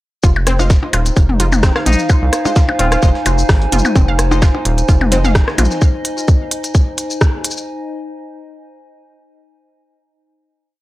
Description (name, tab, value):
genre	minimal techno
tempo	129 BPM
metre	4/4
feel	swing 54% on 16ths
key	F minor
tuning	A4 = 440 Hz
part	resonant blip pluck	riff	0.2-5.7 s	C4 to F5	-24 LUFS	equal	chorus, phaser, cassette tape, sidechain pumping, analog delay
part	rubbery square bass	bass	0.2-5.7 s	Eb1 to C2	-15 LUFS	equal	tube saturation, sidechain pumping
part	breakbeat sampler-style drum kit	drums	0.2-5.8 s	hi-hat, snare drum, tambourine	-32 LUFS	right 1 dB	sidechain pumping on perc, high-pass filter on perc, high-pass filter on snare, sidechain pumping on hats, high-pass filter on hats, high-pass filter on room
part	electronic kick drum	drums	0.2-7.3 s	none	-12 LUFS	equal	none
part	garage drum kit	drums	0.2-7.7 s	hi-hat, rim click, shaker	-22 LUFS	equal	none
part	warbly tape-like pad	texture	0.9-7.7 s	Eb4 to Ab5	-22 LUFS	right 1 dB	chorus, built-in reverb, sidechain pumping
part	minimal click drum kit	percussion	0.4-5.7 s	percussion blips, rim click, toms	-19 LUFS	left 2 dB	analog delay
part	wavetable chord stab	stabs	0.6-5.2 s	Ab3 to C5	-25 LUFS	left 2 dB	analog delay
part	trumpet with straight mute	melody	1.9-3.0 s	Eb4 to F4	-24 LUFS	left 1 dB	analog delay
room	little or no reverb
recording	dry, gritty hardware recording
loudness	-11 LUFS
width	side -17 dB against mid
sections	0.2-7.7 drop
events	drop 0.2-7.7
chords	0.2 Fm7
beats	| 0.23 0.70 1.17 1.63 | 2.10 2.56 3.03 3.49 | 3.96 4.42 4.89 5.35 | 5.82 6.28 6.75 7.21